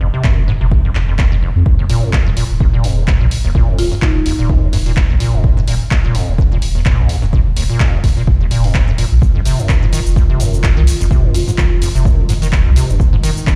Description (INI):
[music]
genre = acid house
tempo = 127 BPM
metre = 4/4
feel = swing 55% on 16ths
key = unclear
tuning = A4 = 440 Hz
[part]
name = acid bass, square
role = riff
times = 0.0-13.5 s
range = F1 to Eb3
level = -20 LUFS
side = equal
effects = subtle chorus, vintage 12-bit sampler grit
[part]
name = warm sub bass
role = bass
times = 0.0-13.3 s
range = Eb1 to F2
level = -18 LUFS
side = equal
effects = sidechain pumping
[part]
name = electronic kick drum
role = drums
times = 0.2-13.6 s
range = none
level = -16 LUFS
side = equal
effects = none
[part]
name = punchy analog drum machine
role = drums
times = 0.2-13.6 s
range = handclaps, hi-hat, shaker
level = -26 LUFS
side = equal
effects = none
[part]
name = marimba with soft mallets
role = melody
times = 3.8-4.3, 11.3-11.8 s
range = Eb4 to F4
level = -26 LUFS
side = equal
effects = tape echo
[part]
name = warbly tape-like pad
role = sustained chords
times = 9.4-13.6 s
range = Eb3 to F4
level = -28 LUFS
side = equal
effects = chorus, built-in reverb, sidechain pumping
[sound]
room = little or no reverb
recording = played on a big sound system in a bare room, large studio reverb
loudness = -14 LUFS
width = mono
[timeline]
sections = 0.0-13.6 A section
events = none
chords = 0.0 N.C.; 1.7 Eb5; 9.2 Fm7